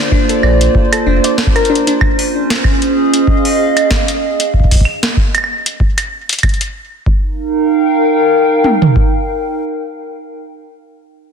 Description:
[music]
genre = IDM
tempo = 95 BPM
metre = 4/4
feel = swing 56% on 16ths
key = unclear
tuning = A4 = 437 Hz
[part]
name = warbly tape-like pad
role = sustained chords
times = 0.0-10.4 s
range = Bb3 to G5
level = -14 LUFS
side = right 2 dB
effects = chorus, built-in reverb, vintage 12-bit sampler grit
[part]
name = harp-like synth pluck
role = arpeggios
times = 0.0-1.9 s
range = D4 to D5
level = -17 LUFS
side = left 4 dB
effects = chorus, ping-pong delay
[part]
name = electro analog drum machine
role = drums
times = 0.1-9.1 s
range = kick drum, toms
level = -13 LUFS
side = equal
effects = none
[part]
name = electro analog drum machine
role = drums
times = 0.3-6.7 s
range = hi-hat, snare drum, woodblock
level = -17 LUFS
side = right 1 dB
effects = none
[part]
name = warm sub bass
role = bass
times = 0.4-1.2 s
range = F1 to Bb1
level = -13 LUFS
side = equal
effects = none
[sound]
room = moderate lush hall reverb, RT60 2.1 s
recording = dense, heavily limited modern master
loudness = -11 LUFS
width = side -6 dB against mid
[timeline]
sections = 0.0-7.1 A section; 7.1-9.6 B section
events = none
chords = 0.0 Bbadd9; 2.0 Db6; 7.1 Ebadd9

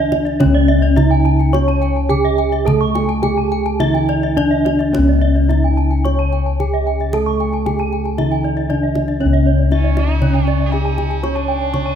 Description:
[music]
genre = Balinese gamelan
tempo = 106-119 BPM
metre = 4/4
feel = straight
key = C# pelog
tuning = A4 = 440 Hz
[part]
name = gamelan-type bronze metallophone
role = melody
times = 0.0-12.0 s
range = C#4 to C#5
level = -20 LUFS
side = right 1 dB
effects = none
[part]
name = gamelan-type bronze metallophone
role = accompaniment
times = 0.0-12.0 s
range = C#3 to C#4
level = -24 LUFS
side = right 5 dB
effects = none
[part]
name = gamelan-type bronze metallophone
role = arpeggios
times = 0.0-12.0 s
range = C#5 to C#6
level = -25 LUFS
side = right 7 dB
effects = none
[part]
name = gamelan-type bossed gongs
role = bass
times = 0.0-12.0 s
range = C#2 to C#5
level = -17 LUFS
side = left 2 dB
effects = none
[part]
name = gamelan-type bronze metallophone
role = arpeggios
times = 0.1-11.9 s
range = C#5 to C#6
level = -24 LUFS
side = left 5 dB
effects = none
[part]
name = kendang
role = percussion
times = 0.1-11.9 s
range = none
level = -24 LUFS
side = right 1 dB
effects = none
[part]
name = rich fiddle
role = second line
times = 9.7-12.0 s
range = C#4 to G#4-40c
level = -27 LUFS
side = right 6 dB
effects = none
[sound]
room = moderate scoring stage reverb, RT60 1.9 s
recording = none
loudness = -13 LUFS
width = side -8 dB against mid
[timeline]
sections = 0.4-9.2 A section; 9.2-12.0 B section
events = none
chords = none

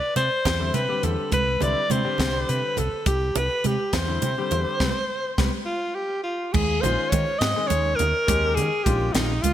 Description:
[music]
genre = electric jazz fusion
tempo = 69 BPM (dotted quarters)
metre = 6/8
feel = straight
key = C major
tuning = A4 = 440 Hz
[part]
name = bright alto saxophone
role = melody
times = 0.0-9.5 s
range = Eb4 to Eb5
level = -24 LUFS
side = equal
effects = none
[part]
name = woody fretless electric bass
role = bass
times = 0.2-9.5 s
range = Bb1 to Eb3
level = -26 LUFS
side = equal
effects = none
[part]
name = crisp fusion drum kit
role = drums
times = 0.2-9.5 s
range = crash cymbal, hi-hat, kick drum, snare drum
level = -27 LUFS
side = left 1 dB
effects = gated reverb
[part]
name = congas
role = percussion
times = 0.2-9.5 s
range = none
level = -31 LUFS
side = right 9 dB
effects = none
[part]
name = warm grand piano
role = accompaniment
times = 0.6-9.3 s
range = D3 to Ab4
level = -31 LUFS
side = left 6 dB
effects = analog chorus
[sound]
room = moderate lush hall reverb, RT60 2.3 s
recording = bright 1980s-style digital production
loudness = -21 LUFS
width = side -11 dB against mid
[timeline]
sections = 0.0-6.5 A section; 6.5-9.5 B section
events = band accent 4.8-6.5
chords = 0.0 C; 4.8 C5; 5.7 N.C.; 6.5 Eb9sus4

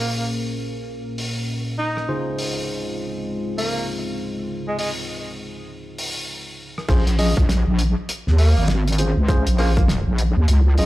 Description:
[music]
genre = glitch hop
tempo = 100 BPM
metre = 4/4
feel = swing 62% on 16ths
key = Bb minor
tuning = A4 = 440 Hz
[part]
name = breathy tenor saxophone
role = melody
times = 0.0-9.8 s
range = Ab3 to Eb4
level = -28 LUFS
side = right 1 dB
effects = tape echo
[part]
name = dark analog pad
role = sustained chords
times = 0.0-6.8 s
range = Bb2 to Bb4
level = -30 LUFS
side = equal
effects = chorus, sidechain pumping
[part]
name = bright tine electric piano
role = stabs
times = 0.0-10.9 s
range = Bb2 to Eb5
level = -29 LUFS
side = left 1 dB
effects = sidechain pumping, tape echo
[part]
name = cloth-damped thuddy drum kit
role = drums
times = 1.2-10.9 s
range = crash cymbal, hi-hat, rim click, snare drum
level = -28 LUFS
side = equal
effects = none
[part]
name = wobble bass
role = bass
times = 6.9-10.9 s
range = Ab1 to Eb2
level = -17 LUFS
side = equal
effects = chorus, overdrive
[part]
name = electronic kick drum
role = drums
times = 6.9-9.9 s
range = none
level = -18 LUFS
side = equal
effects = overdrive
[sound]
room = light reverb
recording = played on a big sound system in a bare room, large studio reverb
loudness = -19 LUFS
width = side -17 dB against mid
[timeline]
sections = 0.0-6.9 A section; 6.9-10.9 B section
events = drop 6.9-10.9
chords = 0.0 Bbm7; 2.1 Dbmaj7; 6.9 Bbm7

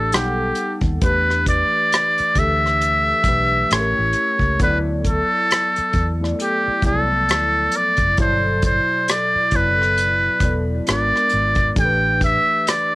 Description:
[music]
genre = R&B, neo-soul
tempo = 67 BPM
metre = 4/4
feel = swing 59% on 16ths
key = unclear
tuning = A4 = 441 Hz
[part]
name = trumpet with metal mute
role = melody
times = 0.0-12.9 s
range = G4 to G5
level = -18 LUFS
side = equal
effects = cassette tape
[part]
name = mellow tine electric piano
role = accompaniment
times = 0.0-12.9 s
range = B2 to F#5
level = -25 LUFS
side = left 1 dB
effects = analog chorus, cassette tape
[part]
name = vintage muted fingered electric bass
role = bass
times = 0.0-12.4 s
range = E1 to E2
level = -23 LUFS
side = equal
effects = none
[part]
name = unplugged drum kit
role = drums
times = 0.1-12.9 s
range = hi-hat, kick drum, rim click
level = -21 LUFS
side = equal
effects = cassette tape
[sound]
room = light reverb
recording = home recording on cassette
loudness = -16 LUFS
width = side -21 dB against mid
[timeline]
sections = 0.0-12.9 A section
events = none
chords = 0.1 B7b13; 1.0 Em7; 3.7 A7b9; 4.6 D7; 8.2 Gmaj9; 10.9 G#dim7; 11.8 Asus2

